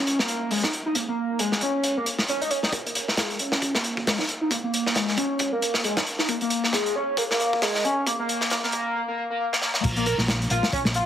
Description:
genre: breakbeat, breaks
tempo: 135 BPM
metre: 4/4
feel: swing 58% on 16ths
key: Bb minor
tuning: A4 = 440 Hz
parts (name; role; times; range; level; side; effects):
- overdriven synth lead; riff; 0.0-11.0 s; Ab3 to Bb4; -25 LUFS; equal; distortion, tube saturation, wide subtle chorus, dub echo
- crunchy breakbeat drum kit; drums; 0.1-11.1 s; crash cymbal, hi-hat, kick drum, snare drum; -25 LUFS; equal; high-pass filter on kick, high-pass filter on hats, high-pass filter on cymbals, high-pass filter on snare, high-pass filter on room
- hollow-body short-scale fingered electric bass; bass; 9.8-11.0 s; Bb1; -26 LUFS; equal; none
room: wet studio reverb, RT60 0.5 s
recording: heavily compressed radio sound, high-pass filter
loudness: -22 LUFS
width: side -10 dB against mid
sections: 0.0-2.7 A section; 2.7-9.8 B section; 9.8-11.1 C section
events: filter sweep on analog synth lead 0.0-2.7, 2.7-9.8; build-up 2.7-9.8; drum fill 9.5-9.8; drop 9.8-11.1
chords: 0.0 Bbm; 9.8 Bb5

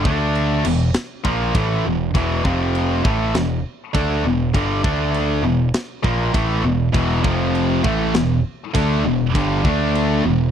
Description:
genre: heavy metal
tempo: 100 BPM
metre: 4/4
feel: straight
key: E phrygian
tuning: A4 = 440 Hz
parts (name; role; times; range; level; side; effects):
- heavy high-gain guitar; riff; 0.0-10.5 s; E2 to D4; -22 LUFS; right 8 dB; distortion
- tight distorted guitar; riff; 0.0-10.5 s; E2 to D4; -23 LUFS; left 10 dB; distortion
- growling picked electric bass; bass; 0.0-10.5 s; E1 to D2; -22 LUFS; equal; overdrive
- tight metal drum kit; drums; 0.1-10.1 s; crash cymbal, kick drum, snare drum; -23 LUFS; equal; none
- thick fuzz guitar; riff; 6.9-10.5 s; E2 to D4; -23 LUFS; left 1 dB; distortion
room: small room ambience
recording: dry, close 1970s-style studio recording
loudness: -17 LUFS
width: side -8 dB against mid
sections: 0.0-10.5 A section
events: none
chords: 0.1 D5; 0.7 E5; 2.5 F5; 3.1 Em; 4.9 D5; 5.4 E5; 7.2 F5; 7.8 Em; 9.6 D5

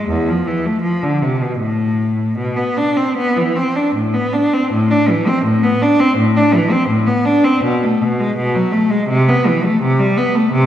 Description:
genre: classical, baroque-style suite movement for unaccompanied cello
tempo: 76-84 BPM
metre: 4/4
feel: rubato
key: A minor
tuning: A4 = 440 Hz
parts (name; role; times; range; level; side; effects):
- rich cello; solo; 0.0-10.7 s; E2 to D4; -13 LUFS; equal; none
room: wet scoring stage reverb, RT60 1.6 s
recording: heard from further back in the room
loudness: -13 LUFS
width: side -11 dB against mid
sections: 0.0-4.7 A section; 4.7-10.7 B section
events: none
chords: none

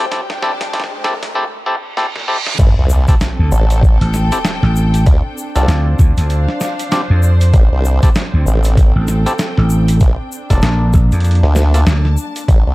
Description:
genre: glitch hop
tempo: 97 BPM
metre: 4/4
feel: swing 60% on 16ths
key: A phrygian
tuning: A4 = 440 Hz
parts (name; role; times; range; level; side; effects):
- overdriven clav; stabs; 0.0-11.8 s; Bb3 to A4; -22 LUFS; left 1 dB; sidechain pumping, dub echo
- riser, reverse cymbal and sub drop; sound effects; 0.0-5.1 s; none; -24 LUFS; right 1 dB; none
- rich studio string section; texture; 0.0-12.7 s; Bb3 to A5; -25 LUFS; equal; sidechain pumping
- boom bap sampler-style drum kit; drums; 0.1-12.6 s; crash cymbal, hi-hat, snare drum; -22 LUFS; equal; none
- electronic kick drum; drums; 0.1-12.6 s; none; -10 LUFS; equal; high-pass filter on kick
- formant-sweep wobble bass; bass; 2.6-12.7 s; F1 to D2; -12 LUFS; equal; chorus, tube saturation
- egg shaker; percussion; 2.6-12.6 s; none; -32 LUFS; left 5 dB; none
- vintage slap bass; bass; 3.4-12.2 s; A1 to F2; -12 LUFS; equal; none
room: little or no reverb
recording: dark, warm production, high-pass filter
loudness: -11 LUFS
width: side -19 dB against mid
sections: 0.0-2.6 A section; 2.6-12.7 B section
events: build-up 0.0-2.6; drum fill 0.0-1.4, 2.0-2.6; riser 0.0-1.4; reverse cymbal 1.4-2.6; drop 2.6-12.7; impact 2.6-5.1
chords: 0.1 Bbmaj7 (rootless); 2.6 Am7; 5.1 Dm7; 7.5 Am7; 10.0 Bbmaj7

